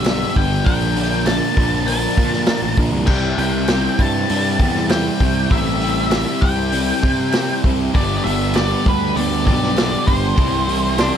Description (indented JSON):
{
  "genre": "classic rock",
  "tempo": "99 BPM",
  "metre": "4/4",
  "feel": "straight",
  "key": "C mixolydian",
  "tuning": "A4 = 441 Hz",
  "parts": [
    { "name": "octave-fuzz lead guitar", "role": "melody", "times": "0.0-11.2 s", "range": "B4 to A5", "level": "-23 LUFS", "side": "left 1 dB", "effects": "distortion" },
    { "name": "picked swing-style acoustic guitar", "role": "accompaniment", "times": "0.0-11.2 s", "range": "G2 to Bb4", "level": "-32 LUFS", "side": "left 9 dB", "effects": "none" },
    { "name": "crunchy overdriven guitar", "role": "riff", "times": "0.0-11.2 s", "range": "G2 to Bb4", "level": "-24 LUFS", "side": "right 11 dB", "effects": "none" },
    { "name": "overdriven electric guitar", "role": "riff", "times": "0.0-11.2 s", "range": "G2 to E4", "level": "-26 LUFS", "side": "left 1 dB", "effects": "none" },
    { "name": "sludgy distorted guitar", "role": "riff", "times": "0.0-11.2 s", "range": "G2 to Bb4", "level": "-26 LUFS", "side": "left 13 dB", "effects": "overdrive" },
    { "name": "fuzz picked electric bass", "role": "bass", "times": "0.0-11.1 s", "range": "G1 to C3", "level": "-22 LUFS", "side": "equal", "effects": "overdrive" },
    { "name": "vintage drum kit", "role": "drums", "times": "0.1-11.1 s", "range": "crash cymbal, hi-hat, kick drum, snare drum", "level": "-20 LUFS", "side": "equal", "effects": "none" },
    { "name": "group handclap", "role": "percussion", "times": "0.1-11.1 s", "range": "none", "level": "-34 LUFS", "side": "right 12 dB", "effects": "none" },
    { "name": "clean lap steel guitar", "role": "second line", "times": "11.0-11.1 s", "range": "D4", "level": "-24 LUFS", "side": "left 4 dB", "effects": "none" }
  ],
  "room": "little or no reverb",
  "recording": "none",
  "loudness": "-15 LUFS",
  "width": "side -8 dB against mid",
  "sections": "0.0-11.2 A section",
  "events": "none",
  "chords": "0.0 G; 0.7 Bb; 3.1 C; 7.9 G; 10.4 C",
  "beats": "0.06 | 0.67 1.27 1.88 2.48 | 3.09 3.70 4.30 4.91 | 5.52 6.12 6.73 7.34 | 7.94 8.55 9.16 9.77 | 10.37 10.98"
}